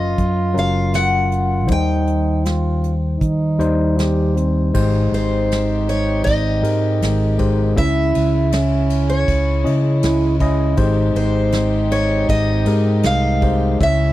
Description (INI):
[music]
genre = acoustic folk-pop ballad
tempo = 79 BPM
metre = 4/4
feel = straight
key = Ab major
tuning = A4 = 440 Hz
[part]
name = picked steel-string acoustic guitar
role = melody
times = 0.0-14.1 s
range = C5 to G5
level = -22 LUFS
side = left 1 dB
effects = none
[part]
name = warm French horn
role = second line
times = 0.0-14.1 s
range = C4 to G4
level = -23 LUFS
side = right 3 dB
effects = none
[part]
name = overdriven tine electric piano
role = accompaniment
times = 0.0-14.1 s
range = Gb1 to Fb5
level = -21 LUFS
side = left 4 dB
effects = none
[part]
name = fingered electric bass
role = bass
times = 0.0-14.1 s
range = Gb1 to Eb3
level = -19 LUFS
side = right 1 dB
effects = none
[part]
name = soft brush drum kit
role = drums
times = 0.2-14.0 s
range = crash cymbal, hi-hat, kick drum, ride cymbal, snare drum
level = -25 LUFS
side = right 1 dB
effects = none
[part]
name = warm chamber string section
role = sustained chords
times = 4.7-14.1 s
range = C3 to G4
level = -31 LUFS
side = left 3 dB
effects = none
[sound]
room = studio ambience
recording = dry, close 1970s-style studio recording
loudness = -15 LUFS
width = side -15 dB against mid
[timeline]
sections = 0.0-4.7 A section; 4.7-14.1 B section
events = none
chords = 0.0 Gb; 1.7 Eb6; 4.7 Abmaj7; 7.8 Dbmadd9; 10.8 Abmaj7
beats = 0.18 0.93 | 1.68 2.44 3.20 3.97 | 4.74 5.50 6.26 7.02 | 7.77 8.53 9.28 10.03 | 10.78 11.53 12.29 13.04 | 13.80